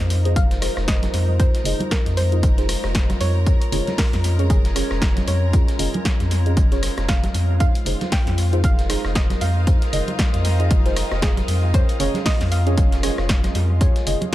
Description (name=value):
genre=deep house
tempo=116 BPM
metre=4/4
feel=swing 58% on 16ths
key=F minor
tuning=A4 = 440 Hz
part: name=soft round pluck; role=melody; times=0.0-14.3 s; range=Ab4 to G5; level=-32 LUFS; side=right 2 dB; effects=chorus, dub echo
part: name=warbly tape-like pad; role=sustained chords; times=0.0-14.3 s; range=Ab3 to G5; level=-32 LUFS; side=equal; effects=chorus, built-in reverb, vintage 12-bit sampler grit, sidechain pumping
part: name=warm sub bass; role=bass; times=0.0-14.2 s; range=F1 to F2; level=-21 LUFS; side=equal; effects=sidechain pumping
part: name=punchy analog drum machine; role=drums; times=0.0-14.3 s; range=hi-hat, rim click, snare drum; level=-28 LUFS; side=equal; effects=analog delay
part: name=airy breathy pad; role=texture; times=0.0-14.3 s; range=F4 to Eb5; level=-34 LUFS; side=left 2 dB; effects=chorus, phaser, sidechain pumping
part: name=rich studio violin section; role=texture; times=0.0-14.3 s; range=F4 to Bb5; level=-36 LUFS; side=left 1 dB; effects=none
part: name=breakbeat sampler-style drum kit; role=drums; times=0.1-14.3 s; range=hi-hat, snare drum, tambourine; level=-36 LUFS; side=equal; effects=overdrive, sidechain pumping on perc, high-pass filter on perc, sidechain pumping on hats, high-pass filter on hats, high-pass filter on snare, high-pass filter on room
part: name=deep mellow chord stab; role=stabs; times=0.2-14.2 s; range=Db4 to Eb5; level=-29 LUFS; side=right 1 dB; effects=chorus, sidechain pumping, dub echo
part: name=electronic kick drum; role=drums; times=0.4-14.3 s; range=none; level=-19 LUFS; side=equal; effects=none
part: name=congas and bongos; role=percussion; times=0.4-14.3 s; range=none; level=-31 LUFS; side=right 2 dB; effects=sidechain pumping on perc, analog delay
room=digital ambience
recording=echo-heavy mix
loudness=-17 LUFS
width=side -15 dB against mid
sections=0.0-14.3 A section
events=filter sweep on synth stab 0.0-14.3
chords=0.0 Fm7; 3.5 Db/F; 7.6 Fm7; 11.7 Db/F